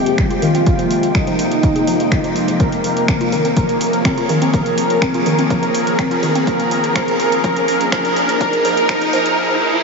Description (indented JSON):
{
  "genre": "melodic techno",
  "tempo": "124 BPM",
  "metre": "4/4",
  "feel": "straight",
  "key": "unclear",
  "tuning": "A4 = 440 Hz",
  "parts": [
    { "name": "soft supersaw", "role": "melody", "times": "0.0-9.4 s", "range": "Eb4 to Bb4", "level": "-18 LUFS", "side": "equal", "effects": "wide subtle chorus, sidechain pumping, low-pass filter, tape echo" },
    { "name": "evolving wavetable pad", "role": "sustained chords", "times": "0.0-9.8 s", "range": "F3 to G5", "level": "-21 LUFS", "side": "left 1 dB", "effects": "phaser, built-in reverb, sidechain pumping" },
    { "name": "woody wave-folded pluck", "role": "arpeggios", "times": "0.0-9.2 s", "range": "Eb3 to Ab4", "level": "-22 LUFS", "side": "equal", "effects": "chorus, cassette tape, sidechain pumping, tape echo" },
    { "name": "overtone-sweeping drone", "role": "drone", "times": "0.0-9.4 s", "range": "F2 to C3", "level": "-29 LUFS", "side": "left 3 dB", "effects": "none" },
    { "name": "techno drum kit", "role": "drums", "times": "0.1-9.4 s", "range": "finger snaps, hi-hat", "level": "-24 LUFS", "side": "equal", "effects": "sidechain pumping on hats, studio reverb" },
    { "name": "electronic kick drum", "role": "drums", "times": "0.2-9.0 s", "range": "none", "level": "-19 LUFS", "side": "equal", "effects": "studio reverb" },
    { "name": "riser and reverse cymbal", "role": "sound effects", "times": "5.6-9.8 s", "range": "none", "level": "-26 LUFS", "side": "equal", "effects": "none" }
  ],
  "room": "wet huge ambient reverb, RT60 6.9 s",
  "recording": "dreamy mix soaked in reverb, high-pass filter, nothing above 7.5 kHz",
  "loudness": "-14 LUFS",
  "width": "side -4 dB against mid",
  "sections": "0.0-9.8 A section",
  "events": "build-up 0.0-9.8; filter sweep on synth pluck 0.0-9.8; filter sweep on supersaw synth 0.0-9.8; filter sweep 0.0-9.8; riser 5.6-9.8; reverse cymbal 9.4-9.8",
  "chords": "0.0 Fmadd9; 2.6 Db6/F",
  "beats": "0.18 | 0.67 1.15 1.63 2.12 | 2.60 3.08 3.57 4.05 | 4.54 5.02 5.50 5.99 | 6.47 6.96 7.44 7.92 | 8.41 8.89 9.38"
}